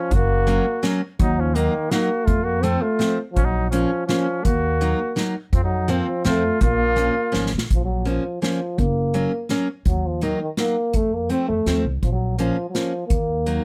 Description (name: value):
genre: alpine folk, alpine dance band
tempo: 166 BPM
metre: 3/4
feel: straight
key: Bb minor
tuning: A4 = 442 Hz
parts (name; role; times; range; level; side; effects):
- warm euphonium; melody; 0.0-13.6 s; Eb3 to C4; -26 LUFS; equal; none
- warm trumpet; second line; 0.0-7.5 s; Bb3 to A4; -30 LUFS; equal; none
- upright bass; bass; 0.1-13.6 s; Gb1 to F2; -25 LUFS; equal; none
- unplugged drum kit; drums; 0.1-13.6 s; hi-hat, kick drum, snare drum; -26 LUFS; equal; none
- fingerpicked steel-string acoustic guitar; accompaniment; 0.5-13.6 s; F3 to Eb4; -26 LUFS; equal; none
room: little or no reverb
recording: close, detailed microphones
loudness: -21 LUFS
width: mono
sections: 0.0-7.7 A section; 7.7-13.6 A section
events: drum fill 7.3-7.7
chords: 0.1 Gb; 1.2 Ebm; 2.3 F; 3.4 Bbm; 4.5 Ebm; 5.5 Fsus4; 6.3 F; 6.6 Bbm; 8.8 Gb; 9.9 Ebm; 10.9 F; 12.0 Bbm; 13.1 Ebm